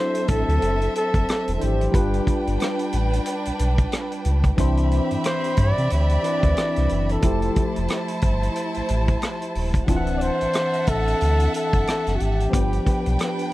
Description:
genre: lush 1970s-style soul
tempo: 91 BPM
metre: 4/4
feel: swing 58% on 16ths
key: unclear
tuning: A4 = 440 Hz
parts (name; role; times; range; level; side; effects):
- breathy flugelhorn; melody; 0.0-13.5 s; F#4 to D5; -25 LUFS; equal; tape echo
- rich studio violin section; second line; 0.0-13.5 s; C4 to B5; -29 LUFS; right 2 dB; none
- barky tine electric piano; accompaniment; 0.0-13.5 s; E3 to F#5; -27 LUFS; left 2 dB; overdrive, phaser
- vintage drum kit; drums; 0.1-13.5 s; hi-hat, kick drum, rim click; -24 LUFS; equal; none
- sub bass with octave; bass; 0.3-13.2 s; D1 to C3; -22 LUFS; equal; none
room: little or no reverb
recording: dry, close 1970s-style studio recording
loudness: -19 LUFS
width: side -17 dB against mid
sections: 0.0-13.5 A section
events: none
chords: 0.0 D9; 1.9 G7; 4.6 Cmaj9; 7.2 Fmaj9; 9.9 D9; 12.5 G7

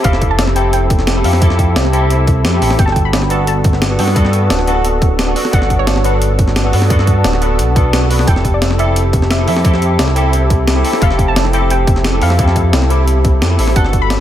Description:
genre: liquid drum and bass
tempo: 175 BPM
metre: 4/4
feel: straight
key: unclear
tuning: A4 = 440 Hz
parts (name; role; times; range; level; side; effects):
- soft round pluck; melody; 0.0-14.2 s; B4 to B5; -22 LUFS; equal; chorus, tape echo
- barky tine electric piano; accompaniment; 0.0-14.2 s; B3 to B4; -16 LUFS; equal; ensemble chorus, diffuse ambient delay
- smooth gliding synth bass; bass; 0.0-14.2 s; D1 to G2; -14 LUFS; equal; none
- breakbeat sampler-style drum kit; drums; 0.0-14.2 s; hi-hat, snare drum; -19 LUFS; left 1 dB; none
- electronic kick drum; drums; 0.0-14.0 s; none; -13 LUFS; equal; overdrive
room: light reverb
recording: none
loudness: -10 LUFS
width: side -11 dB against mid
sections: 0.0-14.2 A section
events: none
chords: 0.0 Fmaj9; 2.8 Gmaj9; 8.3 Fmaj9

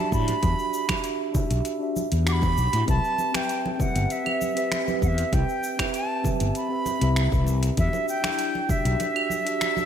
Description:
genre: sunset chillout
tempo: 98 BPM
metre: 4/4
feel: straight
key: E minor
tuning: A4 = 440 Hz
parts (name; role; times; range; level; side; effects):
- bright wooden flute; melody; 0.0-9.9 s; E5 to D6; -28 LUFS; right 1 dB; analog delay
- mellow tine electric piano; accompaniment; 0.0-9.9 s; C4 to F#5; -29 LUFS; moving between left 6 dB and right 6 dB; slow stereo tremolo, auto-pan, analog delay
- fretless electric bass; bass; 0.1-8.9 s; G1 to A2; -23 LUFS; left 1 dB; none
- deep house drum kit; drums; 0.1-9.9 s; claves, finger snaps, hi-hat, shaker; -32 LUFS; equal; overdrive
- electronic kick drum; drums; 0.1-8.8 s; none; -26 LUFS; left 1 dB; overdrive
- congas; percussion; 0.3-9.9 s; none; -35 LUFS; right 4 dB; none
room: moderate lush hall reverb, RT60 2.1 s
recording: dreamy mix soaked in reverb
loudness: -22 LUFS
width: side -9 dB against mid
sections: 0.0-9.9 A section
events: none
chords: 0.0 Em9; 2.9 Cmaj7; 7.8 Em9

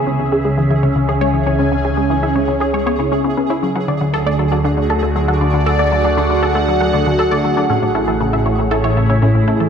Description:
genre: ambient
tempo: 118 BPM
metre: 4/4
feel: straight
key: C# phrygian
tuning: A4 = 440 Hz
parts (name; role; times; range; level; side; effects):
- phased analog pad; sustained chords; 0.0-9.7 s; A2 to B5; -16 LUFS; equal; phaser, chorus
- resonant blip pluck; riff; 0.0-9.7 s; A2 to A4; -20 LUFS; left 2 dB; phaser, tape echo
- round analog bass; bass; 0.0-9.7 s; A1 to D2; -23 LUFS; equal; none
- pulsing gated texture; texture; 0.0-9.7 s; G#4; -26 LUFS; right 5 dB; chorus, built-in reverb
- wide unison pluck; arpeggios; 0.1-9.7 s; C#4 to F#5; -22 LUFS; left 1 dB; phaser, auto-pan, tape echo
room: wet plate reverb, RT60 2.8 s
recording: dreamy mix soaked in reverb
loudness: -13 LUFS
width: side -7 dB against mid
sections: 0.0-9.7 A section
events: none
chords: 0.0 C#m; 3.6 D; 7.7 A

